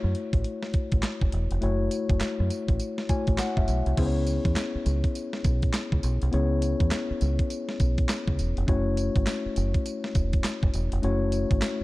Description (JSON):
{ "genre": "R&B, new jack swing", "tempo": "102 BPM", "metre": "4/4", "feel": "swing 62% on 16ths", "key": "C# minor", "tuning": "A4 = 437 Hz", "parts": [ { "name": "mellow tine electric piano", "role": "accompaniment", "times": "0.0-11.8 s", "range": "A3 to G#5", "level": "-30 LUFS", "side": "left 3 dB", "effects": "none" }, { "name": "deep dub fingered electric bass", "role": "bass", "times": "0.0-11.8 s", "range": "E1 to F#2", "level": "-26 LUFS", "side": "equal", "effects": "none" }, { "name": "clean 12-bit digital drum machine", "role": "drums", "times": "0.1-11.8 s", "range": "crash cymbal, handclaps, hi-hat, kick drum, snare drum, tambourine", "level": "-27 LUFS", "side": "equal", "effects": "none" } ], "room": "light reverb", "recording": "dark, warm production", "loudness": "-24 LUFS", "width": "side -19 dB against mid", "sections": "0.0-4.0 A section; 4.0-11.8 B section", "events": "tine electric piano fill 2.8-4.0", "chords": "0.0 F#m7; 4.0 C#m7; 8.7 F#m7", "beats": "0.45 1.03 | 1.62 2.21 2.80 3.39 | 3.98 4.56 5.15 5.74 | 6.33 6.92 7.50 8.09 | 8.68 9.27 9.86 10.45 | 11.03 11.62" }